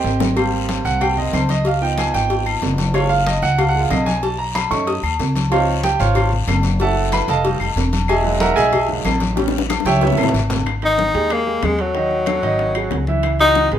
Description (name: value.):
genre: Afro-Cuban jazz.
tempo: 186 BPM.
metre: 4/4.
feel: straight.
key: unclear.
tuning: A4 = 440 Hz.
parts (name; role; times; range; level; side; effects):
clear baby grand piano; accompaniment; 0.0-13.8 s; Eb3 to D#6; -20 LUFS; right 4 dB; none.
upright bass; bass; 0.0-13.8 s; Fb1 to F#2; -21 LUFS; left 1 dB; none.
congas; percussion; 0.0-13.8 s; none; -27 LUFS; left 2 dB; none.
timbales and agogo bells; percussion; 0.0-13.8 s; none; -25 LUFS; left 1 dB; none.
guiro; percussion; 0.1-10.7 s; none; -31 LUFS; left 8 dB; none.
bongos and cowbell; percussion; 0.2-13.7 s; none; -26 LUFS; left 6 dB; none.
claves; percussion; 0.4-13.4 s; none; -30 LUFS; left 8 dB; none.
breathy tenor saxophone; melody; 10.8-13.7 s; Gb3 to Eb4; -17 LUFS; left 3 dB; none.
room: moderate large studio reverb, RT60 0.9 s.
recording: minimal, uncompressed stereo recording.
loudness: -15 LUFS.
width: side -10 dB against mid.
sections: 0.4-10.7 A section; 10.7-13.8 B section.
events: drum fill 0.0-0.4, 9.4-10.7; grand piano solo 0.0-10.7.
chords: 0.4 Abmaj7; 1.7 Db7; 2.9 Gbmaj9; 4.2 B9; 5.5 Dbmaj9; 6.8 Gbm7; 7.5 F9; 8.1 Emaj9#11; 9.4 A9; 10.7 Absus2; 12.0 Ebdim; 12.6 Ab5; 13.2 Dbmadd9.